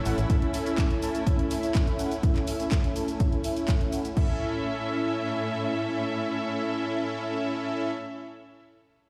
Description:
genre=progressive house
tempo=124 BPM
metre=4/4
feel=straight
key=A major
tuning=A4 = 443 Hz
part: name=warm studio string section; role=sustained chords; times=0.0-7.9 s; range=A2 to E5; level=-36 LUFS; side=equal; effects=sidechain pumping
part: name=soft supersaw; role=stabs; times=0.0-7.9 s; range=C#4 to A5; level=-32 LUFS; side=equal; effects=sidechain pumping, low-pass filter, digital delay
part: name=house drum kit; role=drums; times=0.1-4.3 s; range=crash cymbal, handclaps, hi-hat, shaker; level=-41 LUFS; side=equal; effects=overdrive, studio reverb
part: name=electronic kick drum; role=drums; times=0.3-4.3 s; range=none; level=-27 LUFS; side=equal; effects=overdrive, studio reverb
room=light reverb, digital ambience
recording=played on a big sound system in a bare room, large studio reverb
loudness=-27 LUFS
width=mono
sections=0.0-4.2 A section; 4.2-8.0 B section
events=filter sweep on supersaw synth 0.0-4.2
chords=0.0 A

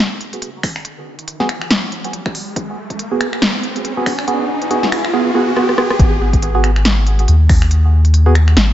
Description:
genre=deep dubstep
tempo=140 BPM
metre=4/4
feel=swing 58% on 16ths, half-time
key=G# minor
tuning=A4 = 440 Hz
part: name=riser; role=sound effects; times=1.2-6.0 s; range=none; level=-23 LUFS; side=right 1 dB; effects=none
part: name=deep house drum kit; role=drums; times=0.2-8.7 s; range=finger snaps, hi-hat, rim click, snare drum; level=-18 LUFS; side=equal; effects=none
part: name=electronic kick drum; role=drums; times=0.6-7.6 s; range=none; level=-15 LUFS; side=equal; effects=high-pass filter on kick, high-pass filter on room
part: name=percussive organ stab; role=stabs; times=1.4-8.3 s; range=B3 to G#4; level=-20 LUFS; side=right 2 dB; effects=chorus, phaser, dub echo
part: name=soft dub sub bass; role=bass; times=6.0-8.7 s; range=G#1 to D#2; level=-11 LUFS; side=equal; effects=none
room=light reverb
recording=echo-heavy mix, nothing above 7.8 kHz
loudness=-12 LUFS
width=side -12 dB against mid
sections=0.0-6.0 A section; 6.0-8.7 B section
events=build-up 0.0-6.0; filter sweep on synth stab 0.0-6.0; riser 1.2-6.0; drum fill 5.6-6.0; drop 6.0-8.7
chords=0.0 G#m7

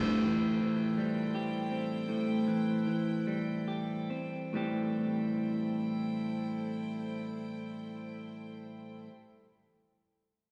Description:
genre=rock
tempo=45-56 BPM (dotted quarters)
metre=6/8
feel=straight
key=A minor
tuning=A4 = 440 Hz
part: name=rich chamber string section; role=sustained chords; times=0.0-9.1 s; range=E4 to G5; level=-46 LUFS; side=equal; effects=none
part: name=electric guitar through a small old amp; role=arpeggios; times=0.0-9.1 s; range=A2 to G4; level=-34 LUFS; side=equal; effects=none
room=wet scoring stage reverb, RT60 1.9 s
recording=recorded in a church or concert hall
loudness=-33 LUFS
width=mono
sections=0.0-4.5 A section; 4.5-9.9 B section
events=slowing down 0.0-4.5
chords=0.0 Am7

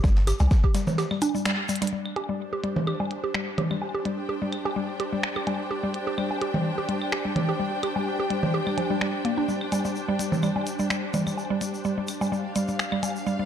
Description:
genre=minimal techno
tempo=127 BPM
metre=4/4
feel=swing 54% on 16ths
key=unclear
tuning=A4 = 440 Hz
part: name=mallet-like synth pluck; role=riff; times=0.0-13.4 s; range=F3 to G4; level=-28 LUFS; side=equal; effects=chorus, sidechain pumping, tape echo
part: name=punchy sub bass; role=bass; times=0.0-0.5 s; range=G1 to C2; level=-21 LUFS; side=equal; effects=tube saturation, sidechain pumping
part: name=electronic kick drum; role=drums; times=0.0-0.7 s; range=none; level=-21 LUFS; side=equal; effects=overdrive
part: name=electronic snare drum and tambourine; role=drums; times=0.0-1.9 s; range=none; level=-40 LUFS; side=left 1 dB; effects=overdrive, sidechain pumping on perc, high-pass filter on perc, high-pass filter on snare, sidechain pumping on hats, high-pass filter on hats
part: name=egg shaker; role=percussion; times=0.0-1.9, 9.5-13.4 s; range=none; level=-39 LUFS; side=left 3 dB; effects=none
part: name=minimal click drum kit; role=drums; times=0.3-13.1 s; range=finger snaps, hi-hat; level=-31 LUFS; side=equal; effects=overdrive, low-pass filter on hats, low-pass filter on snare
part: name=claves, woodblock and percussion blips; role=percussion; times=0.3-13.1 s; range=none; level=-30 LUFS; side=equal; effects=ping-pong delay
part: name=rich symphonic string section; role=texture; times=1.9-13.5 s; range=D4 to G5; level=-31 LUFS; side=right 1 dB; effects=sidechain pumping
room=moderate lush hall reverb, RT60 1.6 s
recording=dark, warm production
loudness=-24 LUFS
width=side -9 dB against mid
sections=0.0-1.9 A section; 1.9-13.5 B section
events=break 1.0-1.9; band accent 1.5; drum fill 1.7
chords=0.0 N.C.; 1.9 Gsus4

